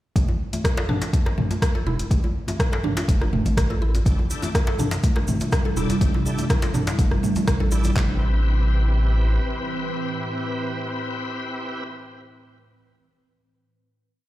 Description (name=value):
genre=afro house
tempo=123 BPM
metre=4/4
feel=straight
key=A minor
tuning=A4 = 438 Hz
part: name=mallet-like synth pluck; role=arpeggios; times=0.2-8.2 s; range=A3 to A4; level=-30 LUFS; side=right 1 dB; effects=chorus, phaser, sidechain pumping, digital delay
part: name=round analog bass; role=bass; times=0.2-9.4 s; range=E1 to A1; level=-22 LUFS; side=equal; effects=sidechain pumping
part: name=deep house drum kit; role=drums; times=0.2-8.1 s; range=handclaps, kick drum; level=-21 LUFS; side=equal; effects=overdrive
part: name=deep house drum kit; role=drums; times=0.2-7.9 s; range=hi-hat, rim click, toms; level=-28 LUFS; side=equal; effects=overdrive
part: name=congas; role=percussion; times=0.2-7.9 s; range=none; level=-30 LUFS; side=right 1 dB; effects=none
part: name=djembe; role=percussion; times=0.3-7.9 s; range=none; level=-31 LUFS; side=left 1 dB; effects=none
part: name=ethereal airy pad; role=sustained chords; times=5.1-11.8 s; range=A2 to B4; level=-30 LUFS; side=right 1 dB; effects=ensemble chorus, built-in reverb, sidechain pumping
part: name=bright tonewheel organ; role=stabs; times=4.1-11.8 s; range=C4 to B4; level=-30 LUFS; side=left 1 dB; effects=overdrive, chorus vibrato, slow rotary speaker, sidechain pumping, digital delay
part: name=tube shaker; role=percussion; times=4.1-7.9 s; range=none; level=-38 LUFS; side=right 2 dB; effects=none
room=light reverb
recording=played on a big sound system in a bare room, stone room reverb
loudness=-20 LUFS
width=side -15 dB against mid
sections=0.2-8.0 drop; 8.0-11.9 final chord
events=drop 0.2-8.0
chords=0.2 A5; 4.1 C6; 8.0 Am7